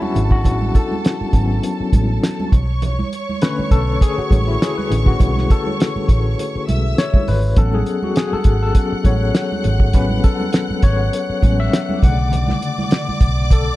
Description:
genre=lush 1970s-style soul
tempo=101 BPM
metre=4/4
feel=swing 54% on 16ths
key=A major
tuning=A4 = 442 Hz
part: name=warm studio string section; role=second line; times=0.0-13.8 s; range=A4 to F#6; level=-28 LUFS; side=right 1 dB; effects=none
part: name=overdriven tine electric piano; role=accompaniment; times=0.0-13.8 s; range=C#3 to F#5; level=-21 LUFS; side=left 4 dB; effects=fast tremolo
part: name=congas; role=percussion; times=0.0-13.4 s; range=none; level=-27 LUFS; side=right 5 dB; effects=none
part: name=vintage muted fingered electric bass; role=bass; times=0.2-13.7 s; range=G#1 to B1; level=-19 LUFS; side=equal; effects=none
part: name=cloth-damped thuddy drum kit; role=drums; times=0.2-13.7 s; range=hi-hat, kick drum, snare drum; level=-15 LUFS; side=equal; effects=none
room=little or no reverb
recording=dark, warm production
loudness=-15 LUFS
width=side -17 dB against mid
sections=0.0-13.8 A section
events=tine electric piano solo 0.0-13.8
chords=0.0 A6; 12.0 Bm9

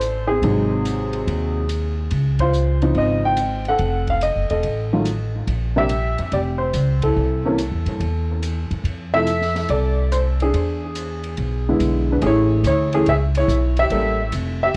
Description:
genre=jazz piano trio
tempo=142 BPM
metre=4/4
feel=swing 68% on 8ths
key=unclear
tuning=A4 = 436 Hz
part: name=warm upright piano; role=melody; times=0.0-14.8 s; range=C3 to G5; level=-23 LUFS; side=equal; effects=analog delay
part: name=upright bass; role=bass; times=0.0-14.8 s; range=E1 to G2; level=-24 LUFS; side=equal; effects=tube saturation
part: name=open jazz drum kit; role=drums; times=0.0-14.8 s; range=hi-hat, kick drum, ride cymbal, snare drum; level=-37 LUFS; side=equal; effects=none
room=moderate studio ambience, RT60 0.5 s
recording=worn, warbling old tape, cassette tape, warbly pitch drift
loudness=-20 LUFS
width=mono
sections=0.0-12.2 A section; 12.2-14.8 B section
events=band accent 2.3, 7.0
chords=0.4 Ab7; 2.1 Dbmaj9; 3.8 F7b9; 5.5 Bbsus2; 7.2 C; 8.9 Fmaj7; 10.5 E7; 12.2 Amaj7; 13.9 A7b9

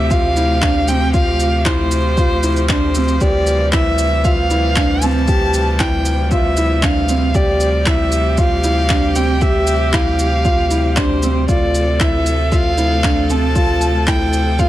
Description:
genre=piano and strings electronica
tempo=116 BPM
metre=4/4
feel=straight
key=D minor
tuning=A4 = 439 Hz
part: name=rich violin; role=melody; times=0.0-14.7 s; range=C5 to A5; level=-20 LUFS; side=equal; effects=none
part: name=clear string quartet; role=sustained chords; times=0.0-14.7 s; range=C3 to A4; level=-23 LUFS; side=right 2 dB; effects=none
part: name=round analog bass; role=bass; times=0.0-14.7 s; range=D2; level=-18 LUFS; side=equal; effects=sidechain pumping
part: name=felt-muted upright piano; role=riff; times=0.1-14.7 s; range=C4 to G4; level=-20 LUFS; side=equal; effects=none
part: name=electronic kick drum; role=drums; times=0.1-14.7 s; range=none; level=-18 LUFS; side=equal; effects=none
part: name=electronic shaker and handclaps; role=drums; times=0.1-14.7 s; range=none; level=-23 LUFS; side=equal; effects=none
room=light reverb, small room ambience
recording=none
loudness=-13 LUFS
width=side -14 dB against mid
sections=0.0-14.7 A section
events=none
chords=0.0 F/D; 3.2 Dm11; 11.5 F/D

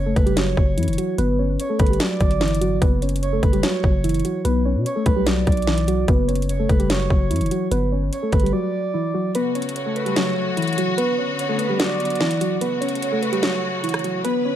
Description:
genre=hip hop, trap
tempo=147 BPM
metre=4/4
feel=half-time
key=F# phrygian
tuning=A4 = 439 Hz
part: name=muted felt-like synth keys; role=melody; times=0.0-14.6 s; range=E3 to C#5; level=-22 LUFS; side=equal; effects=chorus, low-pass filter
part: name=breathy flute-like synth lead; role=second line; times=0.0-14.2 s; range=B4 to D5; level=-28 LUFS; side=right 4 dB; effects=chorus, ping-pong delay
part: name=growling 808-style bass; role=bass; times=0.0-8.5 s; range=F#1 to B2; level=-22 LUFS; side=equal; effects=none
part: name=trap drum kit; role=drums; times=0.2-14.3 s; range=hi-hat, kick drum, rim click, snare drum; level=-21 LUFS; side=equal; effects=none
part: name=rich symphonic string section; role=sustained chords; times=9.3-14.6 s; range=C#3 to B4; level=-27 LUFS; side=left 3 dB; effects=none
room=digital ambience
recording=none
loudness=-18 LUFS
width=side -11 dB against mid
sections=0.0-14.6 A section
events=filter sweep on synth keys 0.0-9.3; break 8.5-9.3; kick muted 9.3-14.6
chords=0.0 F#m; 1.2 G; 2.8 F#m; 4.5 Bm; 6.1 F#m; 7.7 G; 9.3 F#m; 11.0 Bm; 12.6 F#m

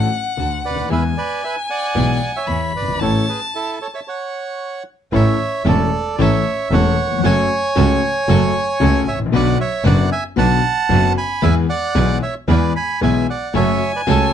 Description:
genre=tango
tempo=114 BPM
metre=4/4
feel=rubato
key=A major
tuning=A4 = 440 Hz
part: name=warm violin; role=second line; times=0.0-4.1, 13.5-14.3 s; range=F#5 to B5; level=-23 LUFS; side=left 2 dB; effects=none
part: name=warm concert grand piano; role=accompaniment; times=0.0-14.3 s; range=E1 to A4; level=-19 LUFS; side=left 4 dB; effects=none
part: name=rich chamber string section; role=stabs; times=0.0-14.3 s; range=B3 to B4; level=-28 LUFS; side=equal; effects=none
part: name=clear double bass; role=bass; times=0.0-14.3 s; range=E1 to E2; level=-19 LUFS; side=right 2 dB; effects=none
part: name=bandoneon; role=melody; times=0.7-14.3 s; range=E4 to B5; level=-20 LUFS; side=right 4 dB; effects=none
room=moderate studio ambience, RT60 0.5 s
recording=dark, warm production, nothing above 10.6 kHz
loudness=-15 LUFS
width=side -9 dB against mid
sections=0.0-5.1 A section; 5.1-14.3 B section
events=stop 4.1-5.1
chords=0.0 D; 0.9 E; 3.0 A; 7.2 F#m; 9.3 Bm; 11.4 E; 13.5 F#m

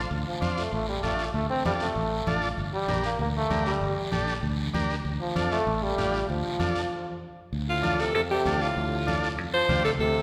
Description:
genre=latin, cumbia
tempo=194 BPM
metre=4/4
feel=straight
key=D minor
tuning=A4 = 440 Hz
part: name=combo organ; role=accompaniment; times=0.0-9.9 s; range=D4 to C5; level=-34 LUFS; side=equal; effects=none
part: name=fingered electric bass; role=bass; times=0.0-10.2 s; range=G1 to F2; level=-33 LUFS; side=equal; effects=none
part: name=congas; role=percussion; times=0.1-10.2 s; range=none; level=-38 LUFS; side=equal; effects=none
part: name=guiro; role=percussion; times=0.1-10.2 s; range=none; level=-42 LUFS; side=equal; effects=none
part: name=bright trombone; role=second line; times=0.3-10.2 s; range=A2 to C4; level=-33 LUFS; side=equal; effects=none
part: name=edgy alto saxophone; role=melody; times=7.7-10.2 s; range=F4 to C5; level=-28 LUFS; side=equal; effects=none
room=wet concert hall reverb, RT60 1.7 s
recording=recorded in a church or concert hall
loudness=-27 LUFS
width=mono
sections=0.0-7.5 A section; 7.5-10.2 B section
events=trombone solo 0.0-7.5; stop 6.9-7.5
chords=0.0 Dm7; 2.6 Gm; 5.1 Dm; 7.5 Dm7

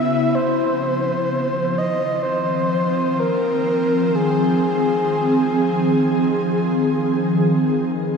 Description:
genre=ambient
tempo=free time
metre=none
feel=none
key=unclear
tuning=A4 = 440 Hz
part: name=breathy flute-like synth lead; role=melody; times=0.0-8.2 s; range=Ab4 to E5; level=-21 LUFS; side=left 1 dB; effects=chorus, shimmer reverb, diffuse ambient delay
part: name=ethereal airy pad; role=sustained chords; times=0.0-8.2 s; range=C#3 to Ab4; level=-19 LUFS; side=equal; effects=ensemble chorus, built-in reverb, shimmer reverb
room=wet plate reverb, RT60 3.2 s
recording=dreamy mix soaked in reverb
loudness=-17 LUFS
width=side -5 dB against mid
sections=0.0-8.0 A section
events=none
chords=0.3 Fm7

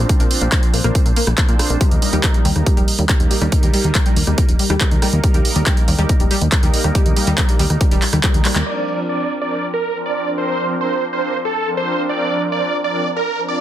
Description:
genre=uplifting trance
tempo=140 BPM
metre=4/4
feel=straight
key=Bb major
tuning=A4 = 440 Hz
part: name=filtered supersaw swell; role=sustained chords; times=0.0-13.6 s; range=F3 to C5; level=-24 LUFS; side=right 1 dB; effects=sidechain pumping
part: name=plucky analog bass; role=bass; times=0.0-8.6 s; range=Eb1 to Bb2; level=-18 LUFS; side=equal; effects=tube saturation, sidechain pumping
part: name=analog pluck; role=arpeggios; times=0.1-8.6 s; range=G3 to Bb3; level=-24 LUFS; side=left 1 dB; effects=wide subtle chorus, sidechain pumping, digital delay
part: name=electronic kick drum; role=drums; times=0.1-8.3 s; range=none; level=-15 LUFS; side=equal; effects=none
part: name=punchy analog drum machine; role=drums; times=0.1-8.8 s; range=crash cymbal, handclaps, hi-hat, rim click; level=-21 LUFS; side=right 1 dB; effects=low-pass filter on hats, low-pass filter on snare, low-pass filter on cymbals, low-pass filter on room
part: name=big supersaw lead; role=melody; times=8.7-13.6 s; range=A4 to D5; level=-20 LUFS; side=right 2 dB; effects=phaser, sidechain pumping, low-pass filter, digital delay
room=light reverb, digital ambience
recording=dense, heavily limited modern master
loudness=-14 LUFS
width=side -12 dB against mid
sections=0.0-8.7 A section; 8.7-13.6 B section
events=drum fill 8.5; band accent 8.6; filter sweep on supersaw synth 8.7-13.6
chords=0.0 Bbadd9; 1.8 Eb; 8.7 Bbadd9

